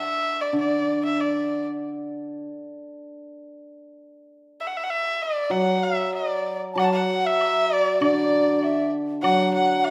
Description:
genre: chinese traditional, Chinese chamber ensemble.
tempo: 97 BPM.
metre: 2/4.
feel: rubato.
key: D gong mode.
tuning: A4 = 440 Hz.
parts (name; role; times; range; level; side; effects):
warm erhu; melody; 0.0-1.7, 4.6-9.9 s; D5 to A5; -27 LUFS; equal; none.
hammered dulcimer; accompaniment; 0.5-2.4, 5.5-9.9 s; D3 to F#3; -27 LUFS; equal; none.
mellow hollow large dizi; second line; 6.7-9.9 s; D5 to A5; -27 LUFS; equal; none.
woodblock; percussion; 6.8-9.9 s; none; -38 LUFS; equal; none.
room: wet recital hall reverb, RT60 1.6 s.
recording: none.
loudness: -23 LUFS.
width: mono.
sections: 0.0-6.8 A section; 6.8-9.9 B section.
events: none.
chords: none.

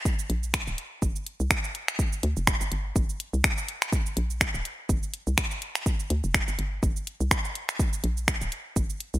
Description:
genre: minimal techno.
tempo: 124 BPM.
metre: 4/4.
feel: swing 56% on 16ths.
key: G minor.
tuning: A4 = 440 Hz.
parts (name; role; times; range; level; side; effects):
electronic kick drum; drums; 0.1-8.9 s; none; -27 LUFS; equal; small room reverb.
house drum kit; drums; 0.1-9.2 s; finger snaps, hi-hat, shaker; -28 LUFS; equal; small room reverb.
hollow knocking FM bass; bass; 0.3-9.2 s; D1 to D2; -28 LUFS; equal; sidechain pumping.
room: light reverb.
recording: bright 1980s-style digital production.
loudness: -25 LUFS.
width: side -15 dB against mid.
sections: 0.0-9.2 A section.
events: none.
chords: none.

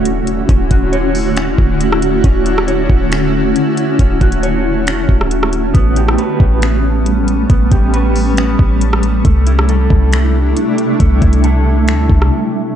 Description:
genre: hip hop, atmospheric cloud-rap.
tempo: 137 BPM.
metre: 4/4.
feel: half-time.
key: D major.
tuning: A4 = 441 Hz.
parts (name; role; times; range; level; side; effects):
granular cloud pad; sustained chords; 0.0-12.7 s; C3 to F#4; -16 LUFS; equal; built-in reverb, sidechain pumping, low-pass filter.
mellow electric guitar; arpeggios; 0.0-12.8 s; A3 to C#5; -21 LUFS; equal; tremolo, low-pass filter, digital delay.
clean 808-style bass; bass; 0.0-12.3 s; D1 to D2; -14 LUFS; equal; none.
impact; sound effects; 0.0-0.5 s; none; -34 LUFS; left 2 dB; none.
smooth R&B drum kit; drums; 0.1-12.3 s; finger snaps, hi-hat, kick drum, rim click; -15 LUFS; equal; vintage 12-bit sampler grit.
room: light reverb.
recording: dark, warm production.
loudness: -10 LUFS.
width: side -10 dB against mid.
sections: 0.0-12.8 A section.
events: impact 0.0-0.5; break 12.3-12.8.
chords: 0.0 Dmaj7; 5.7 A9; 9.2 C69.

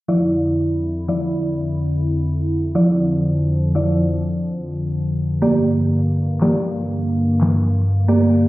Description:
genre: dancehall.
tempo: 90 BPM.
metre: 4/4.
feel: straight.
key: D minor.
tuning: A4 = 440 Hz.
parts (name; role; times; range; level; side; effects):
mallet-like synth pluck; accompaniment; 0.1-8.5 s; F3 to D5; -19 LUFS; right 1 dB; chorus.
hollow soft pad; sustained chords; 0.2-8.5 s; F2 to E4; -18 LUFS; equal; chorus.
electronic handclaps and snare drum; drums; 6.4-7.6 s; none; -22 LUFS; equal; none.
room: moderate lush hall reverb, RT60 2.6 s.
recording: heard muffled through a wall, stone room reverb, EQ, low-pass filter.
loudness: -17 LUFS.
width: side -17 dB against mid.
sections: 0.1-8.5 A section.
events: filter sweep 0.1-8.5.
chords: 0.1 Dmadd9; 5.4 Gm.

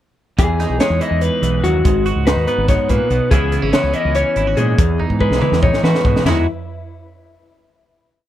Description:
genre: math rock and midwest emo.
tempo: 285 BPM (eighths).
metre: 7/8.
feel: straight.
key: E major.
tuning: A4 = 440 Hz.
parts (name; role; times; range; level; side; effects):
twelve-string electric guitar; accompaniment; 0.4-6.5 s; E2 to F#4; -20 LUFS; right 6 dB; none.
electric guitar through a small old amp; arpeggios; 0.4-6.5 s; E4 to D#5; -19 LUFS; left 4 dB; spring reverb.
growling fingered electric bass; bass; 0.4-6.5 s; G#1 to E3; -19 LUFS; equal; overdrive.
crisp fusion drum kit; drums; 0.4-6.4 s; crash cymbal, hi-hat, kick drum, snare drum, toms; -18 LUFS; equal; none.
room: little or no reverb.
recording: none.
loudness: -14 LUFS.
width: side -12 dB against mid.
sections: 0.4-6.3 A section; 6.3-7.7 final chord.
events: drum fill 5.0-6.3.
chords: 0.4 Emaj9; 1.8 G#m7; 3.3 C#m7; 4.8 Emaj9; 6.3 Emaj7.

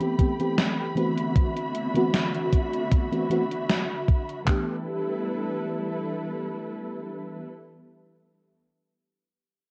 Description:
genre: vaporwave.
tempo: 77 BPM.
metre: 4/4.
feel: swing 53% on 16ths.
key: G major.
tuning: A4 = 439 Hz.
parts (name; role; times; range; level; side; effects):
mellow FM electric piano; accompaniment; 0.0-7.5 s; E3 to G4; -30 LUFS; equal; ensemble chorus, analog delay.
dark studio string section; sustained chords; 0.0-7.5 s; D3 to B5; -35 LUFS; equal; vintage 12-bit sampler grit.
gated 80s digital drum machine; drums; 0.0-4.4 s; hi-hat, snare drum; -30 LUFS; equal; gated reverb, gated reverb snare, vintage 12-bit sampler grit.
gated 80s digital drum machine; drums; 0.2-4.7 s; handclaps, kick drum; -24 LUFS; equal; gated reverb, vintage 12-bit sampler grit.
room: light reverb.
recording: echo-heavy mix, cassette tape.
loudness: -26 LUFS.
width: mono.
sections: 0.0-4.5 A section; 4.5-7.6 B section.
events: none.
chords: 0.0 Am9; 1.0 D13; 4.5 G69.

